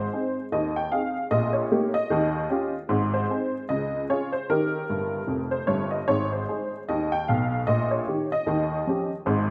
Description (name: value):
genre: jazz, stride piano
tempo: 151 BPM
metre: 4/4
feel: swing 59% on 8ths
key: Ab major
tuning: A4 = 440 Hz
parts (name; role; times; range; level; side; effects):
- honky-tonk upright piano; solo; 0.0-9.5 s; F1 to G5; -26 LUFS; equal; none
room: wet plate reverb, RT60 2.6 s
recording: rough home demo mix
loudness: -26 LUFS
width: mono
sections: 0.0-9.5 A section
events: honky-tonk piano fill 4.9-6.1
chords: 0.0 Ab; 1.3 Eb7/Bb; 2.1 Eb9; 2.9 Ab; 3.7 Db; 4.5 Eb; 6.1 Ab; 7.7 Eb7/Bb; 8.5 Eb9